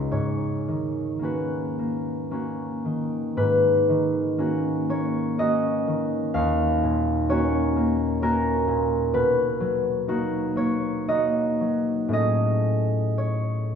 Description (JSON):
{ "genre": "classical, solo harp piece", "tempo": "54-66 BPM", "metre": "3/4", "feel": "rubato", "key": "G# minor", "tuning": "A4 = 440 Hz", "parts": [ { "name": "concert harp", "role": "solo", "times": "0.0-13.8 s", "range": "C#2 to E#5", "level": "-22 LUFS", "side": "equal", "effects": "none" } ], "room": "wet scoring stage reverb, RT60 1.8 s", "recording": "small room ambience", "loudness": "-22 LUFS", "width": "side -7 dB against mid", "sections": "0.0-3.4 A section; 3.4-13.8 A section", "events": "none", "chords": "0.1 G#m11; 6.3 D#m9; 9.1 Bmaj7; 12.1 Amaj7" }